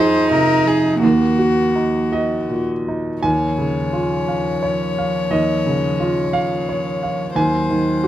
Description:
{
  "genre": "neoclassical piano and strings",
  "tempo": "54-59 BPM (dotted quarters)",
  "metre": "6/8",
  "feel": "rubato",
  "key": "unclear",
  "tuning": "A4 = 445 Hz",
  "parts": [
    { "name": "rich violin", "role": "melody", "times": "0.0-8.1 s", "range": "Gb4 to Db5", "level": "-23 LUFS", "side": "left 6 dB", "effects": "none" },
    { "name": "warm cello", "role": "second line", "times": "0.0-8.1 s", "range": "F3 to Eb4", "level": "-20 LUFS", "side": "right 3 dB", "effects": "none" },
    { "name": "clear grand piano", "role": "accompaniment", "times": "0.0-8.1 s", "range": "Eb2 to Ab5", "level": "-19 LUFS", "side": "right 1 dB", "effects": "none" }
  ],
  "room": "light reverb",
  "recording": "dark, warm production",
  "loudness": "-16 LUFS",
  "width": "side -12 dB against mid",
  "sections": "0.0-3.2 A section; 3.2-8.1 B section",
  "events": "none",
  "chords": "0.0 Fm7; 1.0 Ebm; 3.2 Db/Eb; 7.4 Ab7/Eb"
}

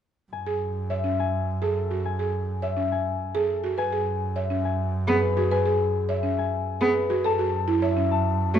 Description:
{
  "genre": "classical, minimalist pattern music",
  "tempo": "104 BPM",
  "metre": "3/4",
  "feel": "straight",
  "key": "F# minor",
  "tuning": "A4 = 444 Hz",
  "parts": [
    { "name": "concert harp", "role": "melody", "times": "0.3-8.6 s", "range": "G#4 to A5", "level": "-28 LUFS", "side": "left 11 dB", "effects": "none" },
    { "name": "rich double bass", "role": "bass", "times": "0.3-8.6 s", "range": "F#2", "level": "-28 LUFS", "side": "right 2 dB", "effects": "none" },
    { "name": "buzzing marimba with soft mallets", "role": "arpeggios", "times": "0.5-8.6 s", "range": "C#4 to C#5", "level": "-27 LUFS", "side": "right 5 dB", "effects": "none" },
    { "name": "warm cello", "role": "accompaniment", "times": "5.1-8.6 s", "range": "A3 to B3", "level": "-25 LUFS", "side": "left 1 dB", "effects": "none" }
  ],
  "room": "moderate recital hall reverb, RT60 1.4 s",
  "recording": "dark, warm production",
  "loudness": "-23 LUFS",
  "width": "side -9 dB against mid",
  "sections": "0.3-8.6 A section",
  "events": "none",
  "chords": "0.3 F#m7; 3.8 C#7sus4/F#; 7.2 F#m7"
}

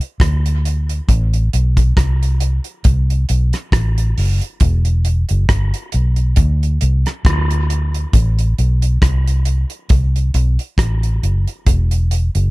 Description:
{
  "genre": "dub reggae",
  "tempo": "68 BPM",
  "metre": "4/4",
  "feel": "swing 56% on 16ths",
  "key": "unclear",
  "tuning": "A4 = 442 Hz",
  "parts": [
    { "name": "damped 70s drum kit", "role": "drums", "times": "0.0-12.5 s", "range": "hi-hat, kick drum, rim click", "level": "-16 LUFS", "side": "equal", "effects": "none" },
    { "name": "vintage muted fingered electric bass", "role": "bass", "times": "0.2-12.5 s", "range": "E1 to D2", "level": "-14 LUFS", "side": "equal", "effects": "none" }
  ],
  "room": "little or no reverb",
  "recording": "none",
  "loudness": "-14 LUFS",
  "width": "side -21 dB against mid",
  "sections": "0.0-12.5 A section",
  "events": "none",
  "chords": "none"
}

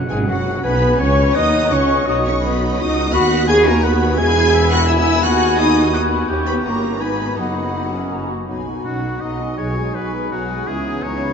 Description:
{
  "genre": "classical",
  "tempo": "168 BPM",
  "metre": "3/4",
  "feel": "straight",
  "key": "B major",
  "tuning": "A4 = 439 Hz",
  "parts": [
    { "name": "clear oboe", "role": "second line", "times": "0.0-11.3 s", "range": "F#4 to B5", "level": "-26 LUFS", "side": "left 3 dB", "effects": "none" },
    { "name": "warm symphonic violin section", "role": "melody", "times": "0.1-11.3 s", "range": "E5 to G#6", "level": "-26 LUFS", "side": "left 1 dB", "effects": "none" },
    { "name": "mellow hollow flute section", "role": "second line", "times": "0.1-11.3 s", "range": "F#5 to D#6", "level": "-26 LUFS", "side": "left 3 dB", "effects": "none" },
    { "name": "warm clarinet", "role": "second line", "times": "0.1-11.3 s", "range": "C#4 to D#5", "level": "-25 LUFS", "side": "left 3 dB", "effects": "none" },
    { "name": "warm symphonic violin section", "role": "second line", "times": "0.1-11.3 s", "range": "F#4 to G#5", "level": "-26 LUFS", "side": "right 1 dB", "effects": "none" },
    { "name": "warm symphonic viola section", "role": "accompaniment", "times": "0.1-11.3 s", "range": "F#3 to G#4", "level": "-25 LUFS", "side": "right 1 dB", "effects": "none" },
    { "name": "mellow French horn section", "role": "sustained chords", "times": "0.1-11.3 s", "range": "E3 to G#4", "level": "-23 LUFS", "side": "right 1 dB", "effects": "stereo widening" },
    { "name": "dark symphonic double bass section", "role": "bass", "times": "0.1-11.3 s", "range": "F#1 to E2", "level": "-23 LUFS", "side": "equal", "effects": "none" },
    { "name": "rich symphonic cello section", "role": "bass", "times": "0.1-11.3 s", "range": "B2 to G#4", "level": "-24 LUFS", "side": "right 1 dB", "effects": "none" },
    { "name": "warm tuba", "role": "bass", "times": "0.1-11.3 s", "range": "E1 to D#2", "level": "-26 LUFS", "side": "equal", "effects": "none" },
    { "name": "mellow trumpet", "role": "stabs", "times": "8.5-11.3 s", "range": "F#4 to G#4", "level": "-31 LUFS", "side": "right 3 dB", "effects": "none" }
  ],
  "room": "wet cathedral reverb, RT60 6.7 s",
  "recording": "in a vast, echoing space, nothing above 7.8 kHz",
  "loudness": "-15 LUFS",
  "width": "side -6 dB against mid",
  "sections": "0.0-8.5 A section; 8.5-11.3 B section",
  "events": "none",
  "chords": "0.0 B5/F#; 1.0 F#5/C#; 2.1 B; 3.1 B/D#; 4.2 E; 5.2 B/D#; 6.3 D#7; 7.0 G#m; 7.4 B/F#; 8.1 F#; 8.5 G#m7/B; 10.7 C#m7"
}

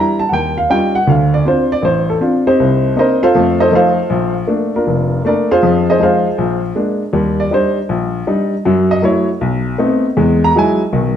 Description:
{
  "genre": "jazz",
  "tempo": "158 BPM",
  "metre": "4/4",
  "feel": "swing 66% on 8ths",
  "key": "Bb major",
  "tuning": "A4 = 442 Hz",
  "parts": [
    { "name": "warm upright piano", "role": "solo", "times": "0.0-11.2 s", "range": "F1 to Bb5", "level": "-12 LUFS", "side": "equal", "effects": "none" }
  ],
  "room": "wet large studio reverb, RT60 1.3 s",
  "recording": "dark, warm production",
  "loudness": "-12 LUFS",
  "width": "side -9 dB against mid",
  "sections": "0.0-7.1 A section; 7.1-11.2 B section",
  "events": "none",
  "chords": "0.3 Eb9; 1.1 Dm7; 2.6 Cm9; 3.3 F7; 4.1 Bbmaj7; 5.6 Fm7; 6.4 Bb7; 7.1 Ebmaj7; 8.6 Gbm7; 9.4 B7b9; 10.2 Emaj9"
}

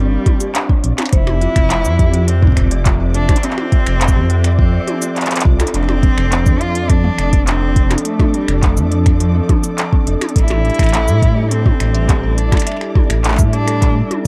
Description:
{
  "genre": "IDM",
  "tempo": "104 BPM",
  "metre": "4/4",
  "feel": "straight",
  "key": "F major",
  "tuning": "A4 = 440 Hz",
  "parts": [
    { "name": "dark cello", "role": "melody", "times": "0.0-14.1 s", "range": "F3 to F4", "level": "-24 LUFS", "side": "equal", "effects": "tape echo" },
    { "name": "warbly tape-like pad", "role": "sustained chords", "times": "0.0-14.3 s", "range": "F3 to E5", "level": "-27 LUFS", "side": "equal", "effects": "chorus, built-in reverb" },
    { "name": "dark detuned synth bell", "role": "arpeggios", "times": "0.0-14.3 s", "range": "C4 to F5", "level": "-28 LUFS", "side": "equal", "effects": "chorus, phaser, tape echo" },
    { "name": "dark detuned saw bass", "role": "bass", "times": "0.0-14.0 s", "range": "F1 to A2", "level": "-18 LUFS", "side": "equal", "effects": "tube saturation" },
    { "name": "flickering grainy texture", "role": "texture", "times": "0.0-14.3 s", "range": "D5", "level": "-35 LUFS", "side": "equal", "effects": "built-in reverb" },
    { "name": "electronic kick drum", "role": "drums", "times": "0.3-13.9 s", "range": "none", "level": "-16 LUFS", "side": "equal", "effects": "overdrive" },
    { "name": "organic electronic drum kit", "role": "drums", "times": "0.3-14.2 s", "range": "finger snaps, handclaps, hi-hat, shaker, toms", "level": "-24 LUFS", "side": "equal", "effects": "overdrive" }
  ],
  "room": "little or no reverb",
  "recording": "dark, warm production",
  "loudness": "-14 LUFS",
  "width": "mono",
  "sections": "0.0-14.3 A section",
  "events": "none",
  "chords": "0.0 C7sus4; 1.1 Fmaj7; 5.7 Dm7/F; 10.4 A7sus4"
}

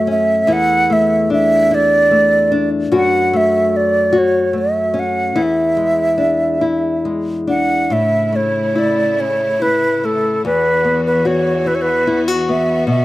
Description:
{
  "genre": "celtic folk, Celtic slow air",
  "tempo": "49 BPM (dotted quarters)",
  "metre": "6/8",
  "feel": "uneven beats, rubato",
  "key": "unclear",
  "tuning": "A4 = 437 Hz",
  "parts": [
    { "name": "wooden flute", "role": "melody", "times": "0.0-13.0 s", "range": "A4 to F#5", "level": "-15 LUFS", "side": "right 2 dB", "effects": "none" },
    { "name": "nylon-string guitar", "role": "accompaniment", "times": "0.0-13.0 s", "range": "E2 to F#4", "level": "-17 LUFS", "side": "left 2 dB", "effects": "none" },
    { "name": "bright studio string section", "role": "sustained chords", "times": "7.9-13.0 s", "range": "C#3 to F#4", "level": "-25 LUFS", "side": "equal", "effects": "none" }
  ],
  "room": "little or no reverb",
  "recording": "recorded outdoors, with no room sound",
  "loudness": "-13 LUFS",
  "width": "side -16 dB against mid",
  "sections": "0.0-7.9 A section; 7.9-13.0 B section",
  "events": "none",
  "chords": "0.5 E7sus4; 2.9 F#m; 5.4 E7; 7.9 A; 10.4 Esus2"
}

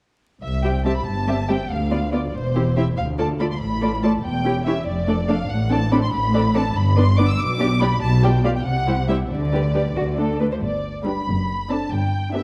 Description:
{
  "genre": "quick classical-period movement for string orchestra",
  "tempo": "94 BPM (dotted quarters)",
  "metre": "6/8",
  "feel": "straight",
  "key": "C major, G major from 5.5 s",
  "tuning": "A4 = 439 Hz",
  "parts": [
    { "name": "muted symphonic violin section", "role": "melody", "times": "0.4-12.4 s", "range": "C5 to E6", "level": "-29 LUFS", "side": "equal", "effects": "none" },
    { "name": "muted symphonic cello section", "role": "bass", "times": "0.4-12.4 s", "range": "C2 to D3", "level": "-27 LUFS", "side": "equal", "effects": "none" },
    { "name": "muted symphonic double bass section", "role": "bass", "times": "0.4-12.4 s", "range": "E1 to D2", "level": "-26 LUFS", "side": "equal", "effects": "none" },
    { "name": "muted symphonic violin section", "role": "second line", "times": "0.6-12.4 s", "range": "F4 to E5", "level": "-31 LUFS", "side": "equal", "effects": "none" },
    { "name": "muted symphonic viola section", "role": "accompaniment", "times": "0.6-12.4 s", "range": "G3 to F4", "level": "-27 LUFS", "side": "equal", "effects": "none" }
  ],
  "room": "moderate scoring stage reverb, RT60 1.5 s",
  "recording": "dark, warm production, vinyl crackle",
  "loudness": "-21 LUFS",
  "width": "mono",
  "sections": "0.4-10.6 A section; 10.6-12.4 B section",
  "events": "none",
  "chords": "0.4 C; 1.7 Bdim/D; 2.3 C/E; 3.0 Dm; 4.2 C#dim/E; 4.9 Dm/F; 5.5 D5/A; 6.8 G; 7.4 G/B; 8.0 G7/B; 8.7 C; 9.3 G/D; 10.0 D5; 10.6 G; 11.3 D7/F#; 11.9 G"
}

